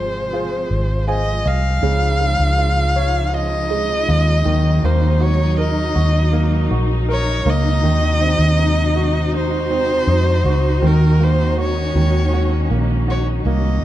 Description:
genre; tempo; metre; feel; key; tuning
pop ballad; 80 BPM; 4/4; straight; unclear; A4 = 440 Hz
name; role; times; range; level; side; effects
warm violin; melody; 0.0-13.8 s; Bb4 to F5; -22 LUFS; equal; none
warm baby grand piano; accompaniment; 0.0-13.8 s; Db3 to Ab5; -23 LUFS; right 2 dB; none
warm studio string section; sustained chords; 0.0-13.8 s; C3 to Gb4; -25 LUFS; equal; none
vintage muted fingered electric bass; bass; 0.0-13.8 s; Ab1 to F2; -17 LUFS; equal; none
room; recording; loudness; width
moderate studio reverb, RT60 0.7 s; dark, warm production; -15 LUFS; side -13 dB against mid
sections
0.0-1.8 A section; 1.8-13.8 B section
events
grand piano fill 0.7-1.8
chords
0.0 Ab6; 1.8 Dbadd9; 4.5 Ebm7; 7.8 Cdim/Eb; 10.8 Ebm7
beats
0.33 1.08 | 1.83 2.58 3.33 4.08 | 4.83 5.58 6.33 7.08 | 7.83 8.58 9.33 10.08 | 10.83 11.58 12.33 13.08 | 13.83

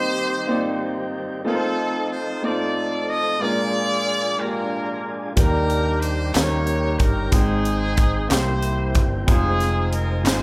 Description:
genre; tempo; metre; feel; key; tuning
slow gospel; 62 BPM (dotted quarters); 6/8; straight; Eb major; A4 = 437 Hz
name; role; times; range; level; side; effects
clear horn section; melody; 0.0-10.4 s; C4 to Eb5; -27 LUFS; equal; none
clear upright piano; accompaniment; 0.0-10.4 s; Ab2 to G5; -28 LUFS; equal; none
tonewheel organ; sustained chords; 0.0-10.4 s; Eb3 to G5; -32 LUFS; equal; slow rotary speaker
deep dub fingered electric bass; bass; 5.4-10.4 s; F1 to Eb2; -26 LUFS; equal; none
crisp fusion drum kit; drums; 5.4-10.4 s; hi-hat, kick drum, snare drum; -22 LUFS; equal; none
group handclap; percussion; 6.3-10.4 s; none; -33 LUFS; equal; none
room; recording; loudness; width
moderate recital hall reverb, RT60 1.4 s; recorded in a church or concert hall; -22 LUFS; mono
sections
0.0-10.4 A section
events
none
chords
0.0 Cm7; 1.5 F7; 3.4 Bb7; 5.4 Ebmaj7; 6.3 Eb7; 7.3 Abmaj7; 8.3 C7; 9.3 Fm7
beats
0.49 | 1.46 2.44 | 3.42 4.39 | 5.37 6.35 | 7.32 8.30 | 9.28 10.25

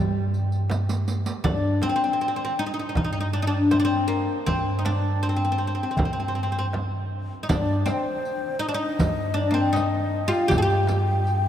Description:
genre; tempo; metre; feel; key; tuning
Arabic maqam ensemble; 80 BPM; 4/4; straight; G maqam bayati; A4 = 440 Hz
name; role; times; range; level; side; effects
oud; melody; 0.0-11.5 s; G3 to Ab4+50c; -24 LUFS; left 1 dB; none
upright bass; bass; 0.0-11.5 s; G2; -26 LUFS; right 1 dB; none
darbuka; percussion; 0.3-11.5 s; none; -33 LUFS; left 1 dB; none
riq; percussion; 0.3-1.4, 7.5-11.4 s; none; -38 LUFS; right 5 dB; none
frame drum; percussion; 0.7-11.1 s; none; -31 LUFS; right 2 dB; none
breathy mellow ney; second line; 7.5-11.5 s; C5 to G5; -30 LUFS; left 4 dB; none
room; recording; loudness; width
wet cathedral reverb, RT60 4.9 s; in a vast, echoing space; -22 LUFS; side -10 dB against mid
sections
0.0-1.5 A section; 1.5-11.5 B section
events
drum fill 0.7-1.5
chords
none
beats
0.70 | 1.45 2.20 2.96 3.71 | 4.47 5.22 5.98 6.74 | 7.49 8.25 9.00 9.76 | 10.51 11.27

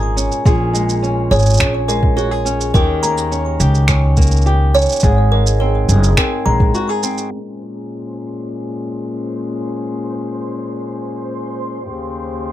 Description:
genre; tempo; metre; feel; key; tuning
folktronica; 105 BPM; 4/4; straight; Bb minor; A4 = 440 Hz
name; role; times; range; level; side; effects
flamenco guitar; arpeggios; 0.0-7.9 s; Ab2 to Ab4; -20 LUFS; left 1 dB; vintage 12-bit sampler grit, ping-pong delay
upright bass; bass; 0.0-6.7 s; Gb1 to Eb2; -15 LUFS; equal; none
electronic shaker and finger snaps; drums; 0.2-7.3 s; none; -22 LUFS; right 3 dB; low-pass filter on perc, low-pass filter on snare, low-pass filter on room
electronic kick drum; drums; 0.5-6.7 s; none; -15 LUFS; equal; none
music box; second line; 1.3-6.7 s; Ab4 to Bb5; -20 LUFS; right 2 dB; ping-pong delay
rich string quartet; sustained chords; 7.3-12.5 s; Eb2 to G4; -24 LUFS; left 3 dB; vintage 12-bit sampler grit
backwards swelling texture; texture; 8.1-12.5 s; C5 to C6; -32 LUFS; right 1 dB; built-in reverb
room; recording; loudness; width
little or no reverb; low-pass filter; -14 LUFS; side -13 dB against mid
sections
0.0-7.3 A section; 7.3-12.5 B section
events
none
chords
0.0 Bbm7; 2.7 Eb7; 5.0 Ab7; 7.3 Bbm7; 11.9 Eb7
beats
| 0.46 1.03 1.60 2.17 | 2.74 3.31 3.88 4.46 | 5.03 5.60 6.17 6.74 | 7.31 7.88 8.46 9.03 | 9.60 10.17 10.74 11.31 | 11.88 12.46

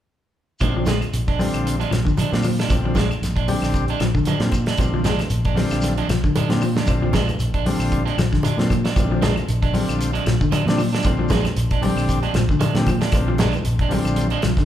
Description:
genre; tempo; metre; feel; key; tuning
afrobeat; 115 BPM; 4/4; swing 55% on 16ths; Bb mixolydian; A4 = 441 Hz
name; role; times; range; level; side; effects
combo organ; accompaniment; 0.6-14.3 s; D3 to G4; -27 LUFS; left 2 dB; spring reverb
electric guitar at the edge of break-up; stabs; 0.6-14.5 s; F3 to D4; -28 LUFS; right 6 dB; none
fingered electric bass; bass; 0.6-14.6 s; Bb1 to Bb2; -23 LUFS; equal; none
damped 70s drum kit; drums; 0.6-14.7 s; hi-hat, kick drum, snare drum; -24 LUFS; equal; none
claves; percussion; 0.6-14.6 s; none; -37 LUFS; left 2 dB; none
congas; percussion; 0.6-14.3 s; none; -27 LUFS; right 2 dB; none
shekere; percussion; 0.6-14.7 s; none; -28 LUFS; left 1 dB; none
semi-hollow electric guitar; arpeggios; 0.8-14.7 s; D3 to Ab3; -26 LUFS; left 3 dB; none
room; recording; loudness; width
moderate large studio reverb, RT60 1.2 s; band playing live in one room; -18 LUFS; side -11 dB against mid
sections
0.6-14.7 A section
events
none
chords
0.6 Bb7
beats
| 0.60 1.13 1.65 2.18 | 2.70 3.22 3.75 4.27 | 4.79 5.31 5.83 6.36 | 6.88 7.40 7.92 8.44 | 8.96 9.48 10.00 10.52 | 11.04 11.57 12.09 12.61 | 13.13 13.65 14.17

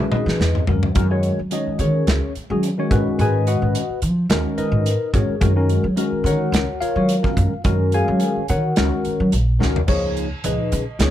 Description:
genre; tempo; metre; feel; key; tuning
electric jazz fusion; 108 BPM; 4/4; swing 54% on 16ths; F# major; A4 = 440 Hz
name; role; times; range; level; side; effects
tine electric piano; accompaniment; 0.0-11.1 s; A#2 to G#5; -21 LUFS; left 2 dB; phaser
upright bass; bass; 0.1-11.1 s; A#1 to F#3; -20 LUFS; equal; none
modern studio drum kit; drums; 0.1-11.1 s; crash cymbal, hi-hat, kick drum, snare drum, toms; -23 LUFS; equal; none
room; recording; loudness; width
little or no reverb; none; -17 LUFS; side -12 dB against mid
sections
0.0-9.9 A section; 9.9-11.1 A section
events
drum fill 0.0-1.0, 9.6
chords
0.0 Emaj9; 1.0 F#add9; 2.9 G#m9; 5.4 F#maj9; 9.9 C#7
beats
0.40 | 0.96 1.52 2.08 2.63 | 3.19 3.75 4.31 4.86 | 5.42 5.98 6.54 7.09 | 7.65 8.21 8.77 9.32 | 9.88 10.44 11.00

